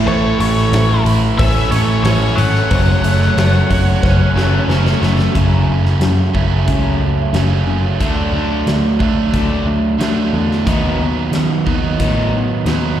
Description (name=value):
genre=classic rock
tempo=90 BPM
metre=4/4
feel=straight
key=F# minor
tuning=A4 = 441 Hz
part: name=overdriven semi-hollow guitar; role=riff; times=0.0-13.0 s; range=F#2 to F#4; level=-20 LUFS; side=left 6 dB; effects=slapback echo
part: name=overdriven semi-hollow guitar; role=riff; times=0.0-13.0 s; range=F#2 to F#4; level=-20 LUFS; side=right 9 dB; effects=spring reverb, slapback echo
part: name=octave-fuzz lead guitar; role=melody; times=0.1-4.6 s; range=C#5 to F#5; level=-21 LUFS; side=left 3 dB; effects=distortion, slapback echo
part: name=biting lead guitar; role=second line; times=0.1-4.6 s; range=A4 to C#5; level=-26 LUFS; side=right 2 dB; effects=overdrive, slapback echo
part: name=picked electric bass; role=bass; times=0.1-13.0 s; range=F#1 to D#3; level=-16 LUFS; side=equal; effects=none
part: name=cowbell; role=percussion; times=0.1-4.8 s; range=none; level=-30 LUFS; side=equal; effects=none
part: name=big rock drum kit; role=drums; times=0.4-12.8 s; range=hi-hat, kick drum, snare drum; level=-21 LUFS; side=equal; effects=none
room=studio reverb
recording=live gig heard through the venue's PA, recital hall reverb, faint mains hum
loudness=-12 LUFS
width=side -11 dB against mid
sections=0.0-5.4 A section; 5.4-13.0 B section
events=drum fill 4.0-5.4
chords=0.0 A; 2.7 F#m; 8.0 D; 10.7 B/D#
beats=| 0.07 0.73 1.39 2.05 | 2.71 3.37 4.03 4.69 | 5.35 6.02 6.68 7.34 | 8.01 8.67 9.34 10.00 | 10.66 11.33 11.99 12.66